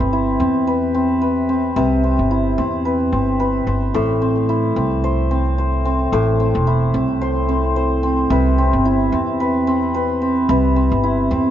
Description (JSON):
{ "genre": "folktronica", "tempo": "110 BPM", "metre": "4/4", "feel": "swing 56% on 16ths", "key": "C major", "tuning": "A4 = 441 Hz", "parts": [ { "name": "hammered dulcimer", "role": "arpeggios", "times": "0.0-11.5 s", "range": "A2 to C5", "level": "-17 LUFS", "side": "equal", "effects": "digital delay" }, { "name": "upright bass", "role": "bass", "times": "0.0-11.5 s", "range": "E1 to E2", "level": "-20 LUFS", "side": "equal", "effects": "tube saturation" } ], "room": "moderate small room reverb, RT60 0.5 s", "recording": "nothing above 7.7 kHz", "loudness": "-15 LUFS", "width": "side -11 dB against mid", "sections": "0.0-11.5 A section", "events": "none", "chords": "0.0 Cmaj7; 3.9 Am; 8.3 Cmaj7", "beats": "0.13 0.67 1.22 | 1.76 2.31 2.85 3.40 | 3.95 4.49 5.04 5.58 | 6.13 6.67 7.22 7.76 | 8.31 8.86 9.40 9.95 | 10.49 11.04" }